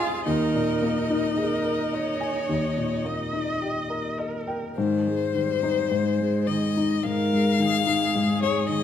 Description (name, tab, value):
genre	classical, slow romantic movement for piano quartet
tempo	53 BPM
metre	4/4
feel	rubato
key	Ab major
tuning	A4 = 440 Hz
part	rich violin	melody	0.0-8.8 s	C5 to F5	-28 LUFS	left 8 dB	none
part	rich cello	second line	0.0-8.8 s	Eb3 to F4	-28 LUFS	right 3 dB	none
part	dark baby grand piano	accompaniment	0.0-8.8 s	C2 to Ab5	-26 LUFS	left 3 dB	none
part	rich viola	accompaniment	0.0-8.8 s	Ab4 to Eb5	-31 LUFS	right 3 dB	none
room	wet recital hall reverb, RT60 1.4 s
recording	none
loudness	-22 LUFS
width	side -9 dB against mid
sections	0.0-4.8 A section; 4.8-8.8 B section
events	none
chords	0.3 Ebsus4; 2.5 Eb; 4.8 Ab